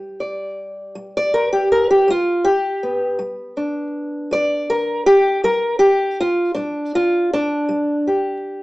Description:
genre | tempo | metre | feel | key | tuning
acoustic country blues, solo or duo | 53 BPM (dotted quarters) | 12/8 | straight | G mixolydian | A4 = 440 Hz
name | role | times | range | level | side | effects
fingerpicked old ladder-braced acoustic guitar | solo | 0.0-8.6 s | G3 to D5 | -16 LUFS | equal | none
room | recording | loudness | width
moderate studio reverb, RT60 0.9 s | band playing live in one room, small speaker sound | -16 LUFS | side -19 dB against mid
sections
0.0-8.6 A section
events
steel-string acoustic guitar solo 0.0-8.6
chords
0.0 G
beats
0.95 2.08 | 3.20 4.32 5.45 6.57 | 7.70

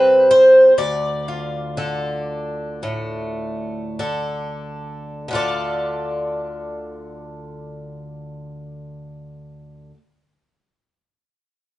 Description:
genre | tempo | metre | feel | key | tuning
folk, solo fingerstyle acoustic guitar | 45-65 BPM | 4/4 | straight | D minor | A4 = 441 Hz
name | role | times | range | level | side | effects
picked twelve-string acoustic guitar | solo | 0.0-10.0 s | D2 to D5 | -18 LUFS | equal | none
room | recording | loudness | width
light reverb | band playing live in one room, nothing above 10.8 kHz | -17 LUFS | side -17 dB against mid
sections
0.0-5.3 A section; 5.3-10.6 B section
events
slowing down 0.0-5.3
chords
0.0 C5; 0.8 Dm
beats
| 0.77 1.76 2.83 3.99 | 5.28 6.62 7.96 9.29

